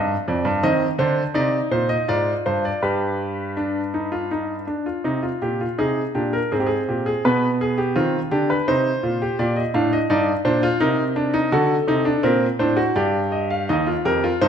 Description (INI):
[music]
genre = classical, baroque-style 3-part fugue for grand piano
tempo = 83 BPM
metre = 3/4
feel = straight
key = C minor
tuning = A4 = 442 Hz
[part]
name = clear baby grand piano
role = solo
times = 0.0-14.5 s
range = Eb2 to F5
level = -18 LUFS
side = equal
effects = none
[sound]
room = moderate recital hall reverb, RT60 1.5 s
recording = none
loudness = -19 LUFS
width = side -8 dB against mid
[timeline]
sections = 0.0-5.0 A section; 5.0-13.7 B section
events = none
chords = 0.0 G5; 0.6 Cm; 2.1 Fm/Ab; 2.8 G; 5.0 Cm; 6.5 Abmaj9; 7.2 G7/B; 8.7 Cm; 9.4 Gm; 10.8 Cm; 11.5 D7; 12.9 G5; 13.7 Eb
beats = | 0.63 1.34 2.07 | 2.82 3.57 4.31 | 5.05 5.78 6.51 | 7.23 7.95 8.67 | 9.38 10.09 10.80 | 11.52 12.23 12.95 | 13.68 14.41